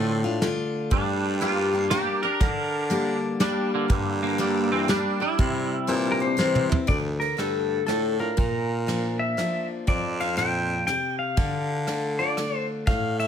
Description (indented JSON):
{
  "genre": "honky-tonk and classic country",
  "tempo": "120 BPM",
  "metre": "3/4",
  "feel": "swing 65% on 8ths",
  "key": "D minor",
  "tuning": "A4 = 440 Hz",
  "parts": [
    { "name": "twangy electric guitar", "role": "second line", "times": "0.0-6.3 s", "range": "D3 to Bb4", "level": "-27 LUFS", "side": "right 4 dB", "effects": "ensemble chorus, tape echo" },
    { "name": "picked steel-string acoustic guitar", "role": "accompaniment", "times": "0.0-13.3 s", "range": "F2 to G4", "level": "-27 LUFS", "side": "left 3 dB", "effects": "none" },
    { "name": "growling baritone saxophone", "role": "bass", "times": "0.0-13.3 s", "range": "D2 to D3", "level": "-29 LUFS", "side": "equal", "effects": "none" },
    { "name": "soft brush drum kit", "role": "drums", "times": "0.4-13.3 s", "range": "hi-hat, kick drum, ride cymbal, rim click, snare drum, toms", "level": "-26 LUFS", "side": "right 1 dB", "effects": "none" },
    { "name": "pedal steel guitar", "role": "melody", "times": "6.1-13.3 s", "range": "A4 to G5", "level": "-27 LUFS", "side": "left 2 dB", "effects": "none" }
  ],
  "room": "little or no reverb",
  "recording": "close, detailed microphones",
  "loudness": "-22 LUFS",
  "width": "side -8 dB against mid",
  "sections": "0.0-6.9 A section; 6.9-13.3 B section",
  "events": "clean electric guitar solo 0.0-6.9; drum fill 6.4-6.9",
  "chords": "0.0 Dm; 0.9 Gm; 5.4 C; 6.9 Dm; 8.4 Bb; 11.4 Dm"
}